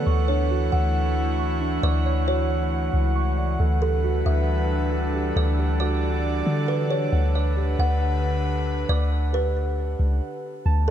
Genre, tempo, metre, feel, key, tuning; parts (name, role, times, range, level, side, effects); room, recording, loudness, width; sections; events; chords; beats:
hip hop; 136 BPM; 4/4; half-time; A4 = 440 Hz
kalimba; melody; 0.0-10.9 s; A4 to F#5; -30 LUFS; right 1 dB; low-pass filter, ping-pong delay
airy breathy pad; sustained chords; 0.0-10.9 s; D3 to F#5; -28 LUFS; left 1 dB; chorus
muted felt-like synth keys; arpeggios; 0.0-10.9 s; D4 to C#6; -32 LUFS; right 7 dB; chorus, low-pass filter, ping-pong delay
soft 808-style bass; bass; 0.0-10.9 s; C#2 to D3; -22 LUFS; equal
light reverb; -21 LUFS; side -10 dB against mid
0.0-10.7 A section
stop 10.2-10.7
0.1 Dmaj7; 3.6 Em11/D; 7.1 Gmaj7/D
| 0.07 0.51 0.95 1.39 | 1.83 2.27 2.71 3.16 | 3.60 4.04 4.48 4.92 | 5.36 5.80 6.24 6.68 | 7.13 7.57 8.01 8.45 | 8.89 9.33 9.77 10.21 | 10.66